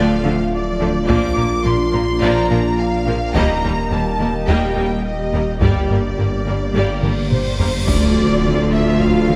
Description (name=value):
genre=cinematic, hybrid orchestral and electronic film score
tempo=106 BPM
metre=4/4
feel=straight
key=unclear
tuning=A4 = 438 Hz
part: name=warm symphonic violin section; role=melody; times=0.0-9.4 s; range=C5 to D6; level=-28 LUFS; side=equal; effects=none
part: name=rich symphonic violin section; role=second line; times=0.0-9.4 s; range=A3 to F5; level=-29 LUFS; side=equal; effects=none
part: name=bright symphonic viola section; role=accompaniment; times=0.0-9.4 s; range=F3 to F4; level=-27 LUFS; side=equal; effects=none
part: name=airy breathy pad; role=sustained chords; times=0.1-9.4 s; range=F3 to Eb5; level=-28 LUFS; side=equal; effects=chorus
part: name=dark French horn section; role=sustained chords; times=0.0-9.4 s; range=A3 to G4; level=-26 LUFS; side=equal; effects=none
part: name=bright symphonic cello section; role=bass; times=0.0-9.4 s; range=D2 to D3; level=-26 LUFS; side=equal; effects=none
part: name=clear symphonic double bass section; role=bass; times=0.0-9.4 s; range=G1 to Eb2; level=-26 LUFS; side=equal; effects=none
part: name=swelling detuned saw bass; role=bass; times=0.0-9.4 s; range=D1 to Bb1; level=-26 LUFS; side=equal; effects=none
part: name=taiko ensemble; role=drums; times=1.1-9.4 s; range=none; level=-24 LUFS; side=equal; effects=none
part: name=cymbal swell and impact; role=sound effects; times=7.2-9.4 s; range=none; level=-27 LUFS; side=equal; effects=none
part: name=mellow tuba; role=bass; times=7.9-9.4 s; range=D2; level=-23 LUFS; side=equal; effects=none
room=wet concert hall reverb, RT60 2.1 s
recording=none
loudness=-17 LUFS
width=mono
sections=0.0-7.9 A section; 7.9-9.4 B section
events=drum fill 7.0-7.9; cymbal swell 7.2-7.9; impact 7.9-9.4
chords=0.0 Dm; 1.1 Bb; 3.4 Eb; 5.6 Gm; 7.9 Dm